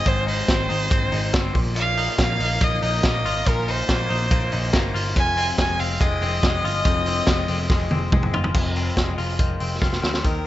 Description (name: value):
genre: jangly indie pop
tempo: 142 BPM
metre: 4/4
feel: straight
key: unclear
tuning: A4 = 439 Hz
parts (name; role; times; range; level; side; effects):
- rich violin; melody; 0.0-10.5 s; Bb4 to Ab5; -25 LUFS; equal; none
- direct-recorded clean electric guitar; arpeggios; 0.0-10.5 s; F2 to Ab4; -28 LUFS; left 4 dB; lush chorus
- vintage muted picked electric bass; bass; 0.1-10.5 s; F1 to Eb2; -26 LUFS; equal; none
- vintage drum kit; drums; 0.1-10.3 s; crash cymbal, hi-hat, kick drum, ride cymbal, snare drum, toms; -22 LUFS; equal; none
room: light reverb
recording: nothing above 7.8 kHz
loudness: -19 LUFS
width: side -14 dB against mid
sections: 0.0-8.5 A section; 8.5-10.2 B section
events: drum fill 7.7-8.5, 9.8-10.2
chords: 0.0 Ab; 1.5 Bbsus4; 5.2 Fm7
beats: | 0.06 0.48 0.91 1.33 | 1.76 2.19 2.61 3.03 | 3.46 3.88 4.31 4.73 | 5.16 5.58 6.00 6.43 | 6.85 7.27 7.70 8.12 | 8.54 8.97 9.39 9.82 | 10.24